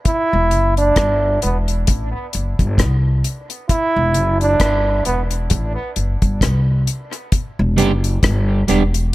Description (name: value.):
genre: dub reggae.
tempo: 66 BPM.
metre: 4/4.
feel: swing 57% on 16ths.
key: E minor.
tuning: A4 = 441 Hz.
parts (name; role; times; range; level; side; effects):
bright trombone; second line; 0.1-5.2 s; B3 to E4; -19 LUFS; right 2 dB; dub echo.
deep reggae drum kit; drums; 0.1-9.1 s; hi-hat, kick drum, rim click; -18 LUFS; left 1 dB; none.
upright bass; bass; 0.3-9.1 s; E1 to C2; -18 LUFS; equal; none.
electric guitar at the edge of break-up; accompaniment; 7.8-8.8 s; G3 to G4; -18 LUFS; right 4 dB; wide subtle chorus.
room: light reverb, small room ambience.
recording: none.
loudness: -15 LUFS.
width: side -17 dB against mid.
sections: 0.0-7.3 A section; 7.3-9.1 B section.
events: break 0.0-7.3.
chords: 0.1 Em; 1.9 Am7; 3.7 Em; 5.5 Am7; 7.3 Em7.